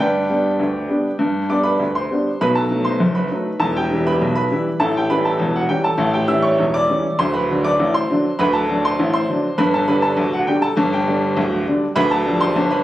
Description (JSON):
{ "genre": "ragtime piano", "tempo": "100 BPM", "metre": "2/4", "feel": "straight", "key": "G major", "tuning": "A4 = 440 Hz", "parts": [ { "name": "clear upright piano", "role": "solo", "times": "0.0-12.8 s", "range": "D1 to E6", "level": "-16 LUFS", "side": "equal", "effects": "none" } ], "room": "light reverb", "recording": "recorded on a phone in the room, club reverb", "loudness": "-16 LUFS", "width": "side -14 dB against mid", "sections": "0.0-2.4 A section; 2.4-12.8 B section", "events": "none", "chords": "0.0 G; 2.4 B7; 3.6 Em; 4.8 A7; 7.2 D7; 9.6 G; 12.0 G7/D" }